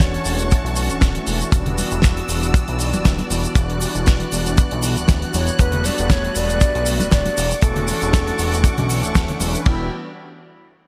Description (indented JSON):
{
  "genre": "nu-disco, nu disco",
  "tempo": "118 BPM",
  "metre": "4/4",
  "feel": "swing 54% on 16ths",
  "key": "E dorian",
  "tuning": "A4 = 439 Hz",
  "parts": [
    { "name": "breathy mellow silver concert flute", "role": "melody", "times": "0.0-0.8, 5.3-9.9 s", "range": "E4 to D5", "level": "-28 LUFS", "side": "equal", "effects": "delay" },
    { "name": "warm analog pad", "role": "accompaniment", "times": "0.0-9.9 s", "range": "E3 to B4", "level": "-28 LUFS", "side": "equal", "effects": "chorus, sidechain pumping, digital delay" },
    { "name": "clear symphonic string section", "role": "sustained chords", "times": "0.0-9.9 s", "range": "E4 to F#6", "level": "-32 LUFS", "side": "equal", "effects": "sidechain pumping" },
    { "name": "fat analog bass", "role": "bass", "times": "0.0-9.9 s", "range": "D1 to B1", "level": "-26 LUFS", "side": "equal", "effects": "none" },
    { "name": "damped 70s drum kit", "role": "drums", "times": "0.0-9.8 s", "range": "crash cymbal, hi-hat, shaker, snare drum", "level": "-27 LUFS", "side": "equal", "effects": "none" },
    { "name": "kick drum", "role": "drums", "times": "0.0-9.8 s", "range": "none", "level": "-18 LUFS", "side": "equal", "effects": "none" },
    { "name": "tube shaker and congas", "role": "percussion", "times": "1.5-9.6 s", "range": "none", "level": "-31 LUFS", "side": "equal", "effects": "none" }
  ],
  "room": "light reverb, studio ambience",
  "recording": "bright 1980s-style digital production",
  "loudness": "-19 LUFS",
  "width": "mono",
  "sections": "0.0-9.7 A section; 9.7-10.9 B section",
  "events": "drop 0.0-9.7",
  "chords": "0.0 Dmaj7/E; 1.5 Em7; 5.6 Gmaj7/E; 7.4 Dmaj7/E; 9.7 Em7",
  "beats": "0.00 0.51 1.02 | 1.52 2.03 2.54 3.05 | 3.56 4.07 4.58 5.08 | 5.59 6.10 6.61 7.12 | 7.63 8.14 8.64 9.15 | 9.66"
}